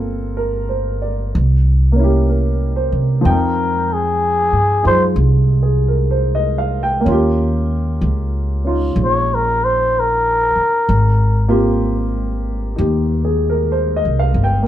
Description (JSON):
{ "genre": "jazz ballad", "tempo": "63 BPM", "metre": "4/4", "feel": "swing 66% on 8ths", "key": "Ab major", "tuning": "A4 = 440 Hz", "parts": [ { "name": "warm baby grand piano", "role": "accompaniment", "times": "0.0-14.7 s", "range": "F3 to G5", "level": "-20 LUFS", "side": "right 1 dB", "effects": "none" }, { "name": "upright bass", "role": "bass", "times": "0.0-14.6 s", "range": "G1 to C3", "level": "-16 LUFS", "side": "equal", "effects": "none" }, { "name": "trumpet with cup mute", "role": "melody", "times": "3.3-11.5 s", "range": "Ab4 to Db5", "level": "-15 LUFS", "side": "left 1 dB", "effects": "none" } ], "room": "moderate studio reverb, RT60 0.6 s", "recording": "heard from further back in the room", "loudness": "-14 LUFS", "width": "side -12 dB against mid", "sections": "0.0-14.7 A section", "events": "muted trumpet solo 0.0-14.7", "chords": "0.0 Gm11; 1.3 C7b9; 3.3 Fm9; 7.1 Eb9; 10.9 Abmaj13", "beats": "0.39 1.35 2.30 | 3.26 4.21 5.17 6.12 | 7.07 8.02 8.97 9.92 | 10.87 11.82 12.77 13.72" }